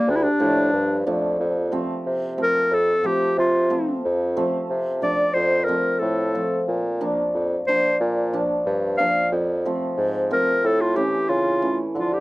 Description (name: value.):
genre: klezmer.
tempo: 91 BPM.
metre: 2/4.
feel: straight.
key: F major.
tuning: A4 = 440 Hz.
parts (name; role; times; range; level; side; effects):
clear clarinet; melody; 0.0-12.2 s; Bb3 to F5; -20 LUFS; left 1 dB; none.
hammered dulcimer; accompaniment; 0.0-12.2 s; E3 to D4; -24 LUFS; equal; none.
mellow bassoon; bass; 0.1-12.2 s; D2 to D3; -24 LUFS; equal; none.
room: light reverb.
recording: dry, close 1970s-style studio recording.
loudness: -19 LUFS.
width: side -19 dB against mid.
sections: 0.0-1.4 A section; 1.4-12.0 B section.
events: none.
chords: 0.1 Dm; 1.4 F; 6.7 Bb; 9.3 F; 10.6 A.